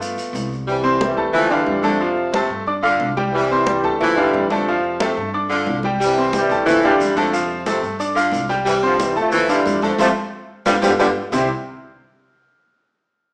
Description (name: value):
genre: latin, salsa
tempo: 180 BPM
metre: 4/4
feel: straight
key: C major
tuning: A4 = 440 Hz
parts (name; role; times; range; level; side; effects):
- bright grand piano; accompaniment; 0.0-11.5 s; C3 to F6; -20 LUFS; equal; none
- upright bass; bass; 0.0-11.5 s; G1 to G2; -30 LUFS; equal; none
- congas; percussion; 0.0-11.4 s; none; -26 LUFS; equal; none
- maracas; percussion; 0.0-0.7, 6.0-11.4 s; none; -34 LUFS; equal; none
- mellow trombone section; melody; 0.7-11.5 s; C3 to A3; -20 LUFS; equal; none
- bright saxophone section; second line; 0.7-11.4 s; A2 to G3; -21 LUFS; equal; none
room: moderate large studio reverb, RT60 1.2 s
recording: band playing live in one room, small speaker sound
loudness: -16 LUFS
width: side -32 dB against mid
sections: 0.7-11.3 A section; 11.3-12.7 B section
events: band accent 10.0-11.3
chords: 0.0 G7; 0.7 C; 1.3 Dm7; 2.0 F; 2.7 G5; 3.3 C; 4.0 Dm7; 4.7 F; 5.3 G5; 6.0 C; 6.7 Dm7; 7.3 F; 8.0 G5; 8.7 C; 9.3 Dm7; 10.0 F; 10.7 G7; 11.3 C5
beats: 0.01 0.34 | 0.68 1.01 1.34 1.68 | 2.01 2.34 2.67 3.01 | 3.34 3.67 4.01 4.34 | 4.67 5.00 5.34 5.67 | 6.00 6.34 6.67 7.00 | 7.33 7.67 8.00 8.33 | 8.67 9.00 9.33 9.66 | 10.00 10.33 10.66 11.00 | 11.33